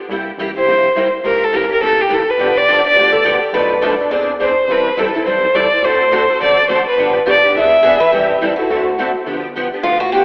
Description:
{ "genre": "acoustic string swing (jazz manouche)", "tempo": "209 BPM", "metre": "4/4", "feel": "swing 59% on 8ths", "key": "G mixolydian", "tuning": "A4 = 440 Hz", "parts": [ { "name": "picked steel-string acoustic guitar", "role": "accompaniment", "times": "0.1-10.2 s", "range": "B2 to A4", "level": "-22 LUFS", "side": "equal", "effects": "ensemble chorus" }, { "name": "round analog bass", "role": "bass", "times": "0.1-10.2 s", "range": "E1 to E2", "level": "-34 LUFS", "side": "equal", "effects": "none" }, { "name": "warm violin", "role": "melody", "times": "0.6-8.4 s", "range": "G4 to E5", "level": "-15 LUFS", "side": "equal", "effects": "tape echo" }, { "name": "picked acoustic archtop guitar", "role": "accompaniment", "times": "2.4-9.1 s", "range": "B2 to D5", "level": "-25 LUFS", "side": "equal", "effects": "lush chorus" }, { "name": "picked steel-string acoustic guitar", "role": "second line", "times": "3.1-4.3, 7.8-10.2 s", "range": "F4 to D5", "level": "-20 LUFS", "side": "equal", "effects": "none" } ], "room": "wet lush hall reverb, RT60 2.2 s", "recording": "dreamy mix soaked in reverb, telephone sound", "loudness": "-14 LUFS", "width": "mono", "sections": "0.0-9.3 A section", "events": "none", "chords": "0.1 C7; 1.2 C#dim7; 2.4 G7; 3.5 Bm7b5; 4.1 Eaug7; 4.7 Am7; 5.8 D7; 7.0 G7; 7.6 E7; 8.1 Am7; 8.7 D7; 9.3 G7", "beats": "| 0.10 0.39 0.67 0.96 | 1.25 1.53 1.82 2.10 | 2.39 2.68 2.96 3.25 | 3.54 3.83 4.11 4.40 | 4.68 4.97 5.26 5.54 | 5.83 6.12 6.41 6.69 | 6.98 7.26 7.55 7.84 | 8.12 8.41 8.70 8.98 | 9.27 9.56 9.84 10.13" }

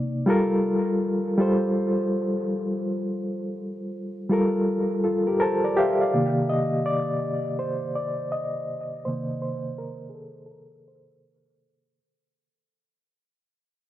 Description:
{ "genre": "hip hop", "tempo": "82 BPM", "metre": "4/4", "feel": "swing 61% on 16ths", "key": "C dorian", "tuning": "A4 = 440 Hz", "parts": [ { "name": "reed electric piano", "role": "solo", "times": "0.0-12.0 s", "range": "C3 to A5", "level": "-23 LUFS", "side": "equal", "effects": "fast tremolo, cassette tape, low-pass filter, analog delay" } ], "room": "moderate studio reverb, RT60 0.5 s", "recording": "dark, warm production", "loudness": "-23 LUFS", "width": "side -13 dB against mid", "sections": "0.0-6.1 A section; 6.1-12.0 B section", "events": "fade-out 6.1-12.0; reed electric piano solo 6.1-12.0; filter sweep on reed electric piano 6.1-12.0", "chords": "0.3 Gm9; 6.1 Cm9", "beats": "| 0.27 1.00 1.73 2.47 | 3.20 3.93 4.66 5.39 | 6.12 6.86 7.59 8.32 | 9.05 9.78 10.52 11.25" }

